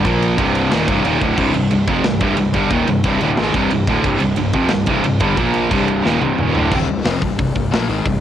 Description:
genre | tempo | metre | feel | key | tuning
heavy metal | 180 BPM | 4/4 | straight | C minor | A4 = 444 Hz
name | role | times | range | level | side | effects
high-gain distorted guitar | riff | 0.0-6.7 s | C2 to Bb3 | -18 LUFS | right 6 dB | distortion
sludgy distorted guitar | riff | 0.0-8.2 s | C2 to Bb3 | -21 LUFS | left 7 dB | overdrive
sludgy distorted guitar | riff | 0.0-8.2 s | C2 to Bb3 | -24 LUFS | equal | overdrive
fuzz fingered electric bass | bass | 0.0-8.2 s | C1 to Bb1 | -24 LUFS | equal | overdrive
tight metal drum kit | drums | 0.1-8.1 s | crash cymbal, hi-hat, kick drum, ride cymbal, snare drum, toms | -22 LUFS | equal | cassette tape
room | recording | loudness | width
little or no reverb | home recording on cassette | -14 LUFS | side -10 dB against mid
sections
0.0-6.7 A section; 6.7-8.2 B section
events
half time 0.0-6.7; drum fill 6.1-6.7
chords
0.0 Bb5; 0.4 Cm; 5.4 Bb5; 5.7 Cm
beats
| 0.05 0.38 0.71 1.05 | 1.38 1.71 2.04 2.38 | 2.71 3.05 3.38 3.71 | 4.05 4.38 4.72 5.05 | 5.39 5.72 6.05 6.39 | 6.72 7.06 7.39 7.73 | 8.06

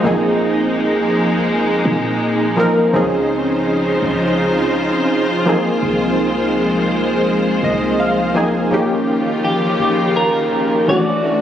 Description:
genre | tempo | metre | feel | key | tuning
R&B | 83 BPM | 4/4 | swing 54% on 16ths | unclear | A4 = 440 Hz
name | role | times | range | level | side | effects
warm analog keys | accompaniment | 0.0-11.4 s | E3 to Ab5 | -16 LUFS | equal | chorus
rich studio string section | sustained chords | 0.0-11.4 s | Db3 to C5 | -20 LUFS | equal | none
clean 808-style bass | bass | 0.0-11.4 s | D1 to Bb2 | -30 LUFS | equal | none
clean electric guitar | melody | 9.4-11.4 s | G4 to D5 | -17 LUFS | equal | phaser, digital delay
room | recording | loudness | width
moderate lush hall reverb, RT60 1.9 s | recorded on a phone in the room, club reverb | -14 LUFS | side -10 dB against mid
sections
0.0-8.7 A section; 8.7-11.4 B section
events
synth keys fill 7.3-8.7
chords
0.0 Bb7sus4; 2.9 Dbmaj9; 5.5 Ab69/C; 8.7 Eb9; 10.9 Dmaj7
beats
| 0.04 0.76 1.49 2.21 | 2.93 3.66 4.38 5.10 | 5.82 6.55 7.27 7.99 | 8.72 9.44 10.16 10.88

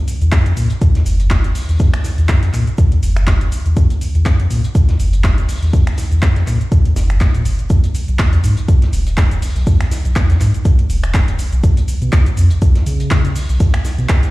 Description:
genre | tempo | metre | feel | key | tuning
deep house | 122 BPM | 4/4 | swing 56% on 16ths | F# major | A4 = 442 Hz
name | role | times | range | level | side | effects
cloth-damped thuddy drum kit | drums | 0.1-14.3 s | hi-hat, shaker, snare drum | -33 LUFS | equal | high-pass filter on hats, small room ambience, high-pass filter on snare, high-pass filter on perc, high-pass filter on room
deep house drum kit | drums | 0.1-14.3 s | cabasa, finger snaps, handclaps, hi-hat | -25 LUFS | equal | small room ambience
warm sub bass | bass | 0.2-14.3 s | E1 to C#3 | -15 LUFS | equal | sidechain pumping
electronic kick drum | drums | 0.3-14.2 s | none | -14 LUFS | equal | small room ambience
room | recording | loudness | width
small room ambience | played on a big sound system in a bare room, large studio reverb | -12 LUFS | side -19 dB against mid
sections
0.0-14.3 A section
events
none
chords
none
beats
0.32 0.81 1.31 | 1.80 2.29 2.78 3.27 | 3.77 4.26 4.75 5.24 | 5.73 6.22 6.72 7.21 | 7.70 8.19 8.68 9.18 | 9.67 10.16 10.65 11.14 | 11.63 12.13 12.62 13.11 | 13.60 14.09

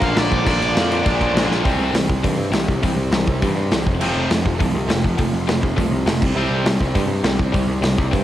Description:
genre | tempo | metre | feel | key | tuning
punk rock | 203 BPM | 4/4 | straight | unclear | A4 = 440 Hz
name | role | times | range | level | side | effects
cranked stack guitar | melody | 0.0-1.5 s | D5 to F5 | -23 LUFS | left 1 dB | overdrive, cassette tape
fuzz guitar | riff | 0.0-8.2 s | F2 to C4 | -26 LUFS | equal | distortion
tight distorted guitar | riff | 0.0-8.2 s | F2 to C4 | -25 LUFS | left 6 dB | distortion
tight distorted guitar | riff | 0.0-8.2 s | Bb2 to D4 | -25 LUFS | right 7 dB | distortion
picked electric bass | bass | 0.0-8.2 s | F1 to G2 | -22 LUFS | equal | none
big rock drum kit | drums | 0.0-8.2 s | crash cymbal, hi-hat, kick drum, snare drum | -21 LUFS | equal | cassette tape
room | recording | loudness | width
small room ambience | home recording on cassette | -16 LUFS | side -12 dB against mid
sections
0.0-1.6 A section; 1.6-8.2 B section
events
drum fill 1.5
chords
0.0 Bb; 1.6 C; 3.9 F; 6.2 C5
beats
0.17 | 0.47 0.76 1.06 1.35 | 1.65 1.95 2.24 2.54 | 2.83 3.13 3.42 3.72 | 4.01 4.31 4.61 4.90 | 5.20 5.49 5.78 6.08 | 6.37 6.67 6.96 7.25 | 7.54 7.84 8.13

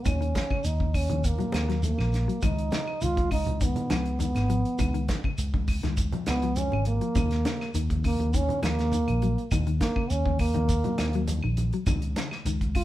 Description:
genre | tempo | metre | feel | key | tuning
afrobeat | 102 BPM | 4/4 | straight | Eb minor | A4 = 440 Hz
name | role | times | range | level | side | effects
trombone with bucket mute | melody | 0.0-12.8 s | Bb3 to F4 | -29 LUFS | right 2 dB | none
mellow electric guitar | arpeggios | 0.0-12.8 s | Db3 to Gb3 | -34 LUFS | left 6 dB | none
fingered electric bass | bass | 0.1-12.8 s | Ab1 to Eb2 | -28 LUFS | equal | none
warm soul drum kit | drums | 0.1-12.8 s | hi-hat, kick drum, snare drum | -30 LUFS | equal | none
claves | percussion | 0.1-12.8 s | none | -42 LUFS | left 2 dB | none
congas | percussion | 0.1-12.3 s | none | -36 LUFS | right 1 dB | none
shekere | percussion | 0.1-12.8 s | none | -37 LUFS | right 1 dB | none
room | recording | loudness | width
moderate stone room reverb, RT60 1.1 s | band playing live in one room | -24 LUFS | side -14 dB against mid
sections
0.0-12.8 A section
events
trombone solo 0.0-12.8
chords
0.0 Ebm7; 2.4 Db7; 7.2 Ebm7; 11.9 N.C.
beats
| 0.06 0.65 1.25 1.84 | 2.43 3.02 3.61 4.21 | 4.80 5.39 5.98 6.57 | 7.16 7.75 8.34 8.93 | 9.52 10.11 10.69 11.28 | 11.87 12.46

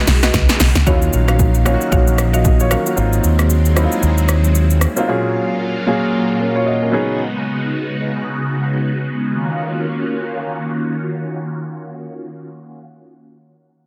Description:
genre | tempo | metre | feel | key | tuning
amapiano | 114 BPM | 4/4 | swing 58% on 16ths | Eb minor | A4 = 440 Hz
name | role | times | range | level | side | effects
phased string machine | sustained chords | 0.0-12.3 s | Bb2 to F5 | -24 LUFS | equal | ensemble chorus, phaser, sidechain pumping, low-pass filter
mallet-like synth pluck | stabs | 0.0-2.9 s | Gb4 to F5 | -26 LUFS | equal | chorus, low-pass filter, delay
woody log drum bass | bass | 0.1-0.9 s | Cb2 to Db2 | -17 LUFS | equal | none
deep house drum kit | drums | 0.1-5.1 s | hi-hat, kick drum, rim click, shaker, snare drum | -19 LUFS | equal | none
warm baby grand piano | accompaniment | 0.9-7.2 s | Bb2 to Eb5 | -21 LUFS | equal | low-pass filter
mellow fretless electric bass | bass | 0.9-4.8 s | Ab1 to Eb2 | -17 LUFS | equal | subtle chorus
room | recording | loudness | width
light reverb | dense, heavily limited modern master | -17 LUFS | mono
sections
0.9-9.3 A section; 9.3-13.5 B section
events
drum fill 0.0-0.9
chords
0.0 Db9sus4; 0.9 Ebm9; 3.0 Ab13; 5.1 Gbmaj7/Bb; 6.9 Db9sus4; 9.3 Ebm9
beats
0.34 | 0.87 1.40 1.92 2.45 | 2.97 3.50 4.03 4.55 | 5.08 5.61 6.13 6.66 | 7.18 7.71 8.24 8.76 | 9.29 9.82 10.34 10.87 | 11.39 11.92

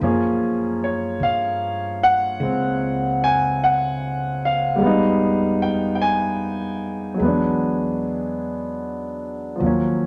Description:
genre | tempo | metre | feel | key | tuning
jazz ballad | 50 BPM | 4/4 | swing 68% on 8ths | unclear | A4 = 440 Hz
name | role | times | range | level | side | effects
clear concert grand piano | accompaniment | 0.0-10.1 s | F3 to Ab5 | -22 LUFS | equal | none
upright bass | bass | 0.0-10.1 s | Db2 to G2 | -32 LUFS | equal | none
room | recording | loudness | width
wet studio reverb, RT60 0.5 s | none | -21 LUFS | mono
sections
0.0-10.1 A section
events
none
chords
0.0 Gbmaj9; 4.8 Fm7b5; 7.2 E9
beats
| 0.01 1.21 2.40 3.60 | 4.80 6.00 7.20 8.40 | 9.61

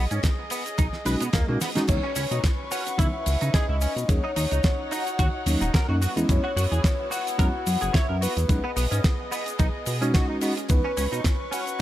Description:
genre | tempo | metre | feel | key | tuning
nu-disco, nu disco | 109 BPM | 4/4 | swing 55% on 16ths | unclear | A4 = 440 Hz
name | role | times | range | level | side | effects
rich chamber string section | sustained chords | 0.0-11.8 s | B3 to C#6 | -35 LUFS | equal | vintage 12-bit sampler grit, sidechain pumping
direct-recorded clean electric guitar | riff | 0.0-11.8 s | A#3 to C#5 | -33 LUFS | right 2 dB | ensemble chorus, analog delay
chorused synth bass | bass | 0.0-11.2 s | D#1 to C#3 | -25 LUFS | equal | none
damped 70s drum kit | drums | 0.1-11.8 s | crash cymbal, hi-hat, ride cymbal, shaker, snare drum | -30 LUFS | right 1 dB | studio reverb, analog delay
electronic kick drum | drums | 0.2-11.4 s | none | -23 LUFS | equal | studio reverb
bell-like tine electric piano | accompaniment | 1.1-10.8 s | E3 to B4 | -29 LUFS | equal | sidechain pumping, analog delay
soft octave-layered synth lead | melody | 1.9-11.8 s | B4 to F#5 | -31 LUFS | left 1 dB | chorus, dub echo
room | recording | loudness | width
small room ambience | echo-heavy mix | -22 LUFS | side -13 dB against mid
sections
0.0-11.8 A section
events
drum fill 1.6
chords
0.0 B6; 1.9 C#m7; 4.1 D#m7; 6.0 F#9sus4; 8.5 B6; 10.7 C#7(no3)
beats
0.24 0.79 1.34 | 1.89 2.44 2.99 3.54 | 4.09 4.64 5.19 5.74 | 6.29 6.84 7.39 7.94 | 8.49 9.04 9.59 10.14 | 10.69 11.24 11.79

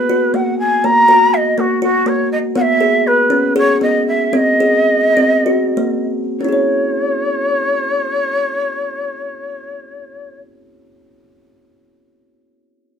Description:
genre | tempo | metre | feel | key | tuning
contemporary instrumental, chamber music in an uneven meter | 185-245 BPM (eighths) | 7/8 | straight | C# dorian | A4 = 440 Hz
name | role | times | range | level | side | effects
breathy shakuhachi | melody | 0.0-10.4 s | F#4 to A#5 | -15 LUFS | equal | none
kalimba | arpeggios | 0.1-10.5 s | A#3 to C#5 | -17 LUFS | left 1 dB | none
room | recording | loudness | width
moderate studio reverb, RT60 0.6 s | none | -13 LUFS | side -7 dB against mid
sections
0.0-6.4 A section; 6.4-10.9 B section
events
slowing down 2.6-6.4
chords
0.0 B5; 2.6 C#m7; 4.3 G#7; 6.4 C#m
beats
0.09 0.34 0.59 | 0.84 1.09 1.33 1.58 1.83 2.07 2.32 | 2.56 2.81 3.06 3.31 3.56 3.81 4.07 | 4.34 4.61 4.88 5.16 5.46 5.76 6.07 | 6.39 6.72 7.04 7.36 7.68 8.00 8.31 | 8.63 8.95 9.27 9.59 9.91 10.23

